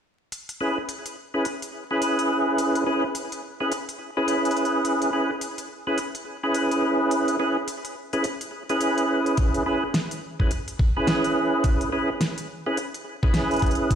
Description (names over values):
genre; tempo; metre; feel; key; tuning
glitch hop; 106 BPM; 4/4; swing 60% on 16ths; C# minor; A4 = 440 Hz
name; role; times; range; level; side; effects
pop drum kit; drums; 0.3-14.0 s; hi-hat, snare drum; -30 LUFS; equal; none
percussive tonewheel organ; stabs; 0.6-14.0 s; C#4 to B4; -23 LUFS; right 1 dB; overdrive, chorus vibrato, slow rotary speaker, sidechain pumping, low-pass filter, tape echo
electronic kick drum; drums; 9.4-14.0 s; none; -22 LUFS; equal; none
room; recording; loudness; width
moderate small room reverb, RT60 0.5 s; played on a big sound system in a bare room, stone room reverb, vinyl crackle; -22 LUFS; side -8 dB against mid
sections
0.3-14.0 A section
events
none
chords
0.3 C#m7